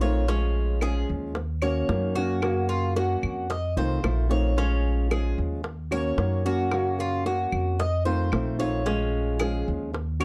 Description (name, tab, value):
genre	latin, Cuban son and guajira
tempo	112 BPM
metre	4/4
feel	straight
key	Bb minor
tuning	A4 = 441 Hz
part	fingerpicked old ladder-braced acoustic guitar	accompaniment	0.0-10.2 s	Db3 to Gb4	-31 LUFS	equal	none
part	Cuban tres	arpeggios	0.0-10.2 s	Db4 to Eb5	-32 LUFS	equal	none
part	upright bass	bass	0.0-10.2 s	Bb1 to Gb2	-29 LUFS	equal	none
part	bongos	percussion	0.0-10.2 s	none	-35 LUFS	equal	none
part	claves	percussion	0.8-10.2 s	none	-40 LUFS	equal	none
room	light reverb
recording	dark, warm production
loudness	-26 LUFS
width	mono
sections	0.0-10.2 A section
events	none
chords	0.3 Bbm7; 1.4 Ebm7; 2.4 Gbmaj7; 3.5 F7; 4.6 Bbm7; 5.6 Ebm7; 6.7 Gbmaj7; 7.8 F7; 8.9 Bbm7